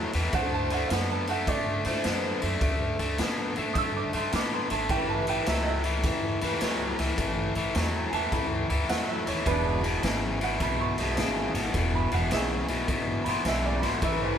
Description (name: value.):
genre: electric blues shuffle.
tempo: 105 BPM.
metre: 4/4.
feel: swing 66% on 8ths.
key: unclear.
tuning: A4 = 437 Hz.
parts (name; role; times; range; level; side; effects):
overdriven electric guitar; riff; 0.0-14.4 s; E2 to B3; -29 LUFS; left 3 dB; none.
upright bass; bass; 0.0-14.4 s; E1 to A2; -32 LUFS; equal; none.
raw garage drum kit; drums; 0.1-14.2 s; kick drum, ride cymbal, snare drum; -31 LUFS; equal; none.
bright upright piano; second line; 0.3-14.4 s; D4 to E6; -32 LUFS; right 6 dB; none.
bright horn section; stabs; 0.3-14.4 s; C#4 to C5; -35 LUFS; right 2 dB; none.
room: moderate stone room reverb, RT60 1.0 s.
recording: band playing live in one room.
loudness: -25 LUFS.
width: side -8 dB against mid.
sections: 0.0-14.4 A section.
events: upright piano solo 0.0-14.4.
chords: 0.3 D9; 4.9 A9; 9.5 E9.